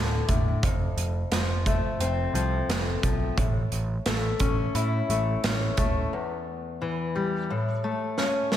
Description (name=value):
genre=quiet-loud alternative rock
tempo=87 BPM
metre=4/4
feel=straight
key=unclear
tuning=A4 = 440 Hz
part: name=fingerpicked steel-string acoustic guitar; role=arpeggios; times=0.0-8.6 s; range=E2 to E4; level=-28 LUFS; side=left 3 dB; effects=slapback echo
part: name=overdriven picked electric bass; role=bass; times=0.0-6.0 s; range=D1 to A2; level=-28 LUFS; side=right 1 dB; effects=none
part: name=big rock drum kit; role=drums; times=0.3-8.6 s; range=hi-hat, kick drum, snare drum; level=-27 LUFS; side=right 1 dB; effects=none
room=moderate scoring stage reverb, RT60 1.9 s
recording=big arena sound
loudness=-24 LUFS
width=side -11 dB against mid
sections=0.0-8.6 A section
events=break 6.1-8.6; drum fill 8.2-8.6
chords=0.0 D5; 0.6 F; 3.4 A; 6.1 Em; 7.5 A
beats=| 0.64 1.32 2.01 2.69 | 3.38 4.07 4.75 5.44 | 6.13 6.81 7.50 8.18